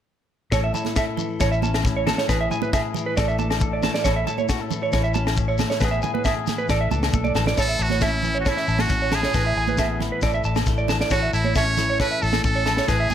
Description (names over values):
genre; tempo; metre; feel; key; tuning
highlife guitar band; 136 BPM; 4/4; straight; A major; A4 = 440 Hz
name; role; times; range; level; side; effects
clean electric guitar; accompaniment; 0.5-13.1 s; A2 to A4; -28 LUFS; left 6 dB; none
electric guitar through a small old amp; arpeggios; 0.5-13.1 s; B4 to A5; -26 LUFS; right 5 dB; tape echo
vintage muted fingered electric bass; bass; 0.5-13.1 s; A1 to C#2; -25 LUFS; left 1 dB; none
tight funk drum kit; drums; 0.5-13.0 s; kick drum, snare drum; -26 LUFS; equal; none
agogo bells; percussion; 0.5-13.0 s; none; -33 LUFS; left 18 dB; none
shekere; percussion; 0.5-13.1 s; none; -32 LUFS; left 4 dB; none
congas; percussion; 0.7-13.1 s; none; -30 LUFS; right 12 dB; none
trumpet with metal mute; melody; 7.6-13.1 s; E4 to C#5; -24 LUFS; right 2 dB; none
room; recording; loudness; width
light reverb, studio reverb; none; -19 LUFS; side -10 dB against mid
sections
0.5-7.6 A section; 7.6-13.1 B section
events
drum fill 7.0-7.6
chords
0.5 A; 2.3 E/A; 3.2 Dsus2/A; 4.1 A; 5.8 E/A; 6.7 Dsus2/A; 7.6 A; 9.3 E/A; 10.2 Dsus2/A; 11.1 A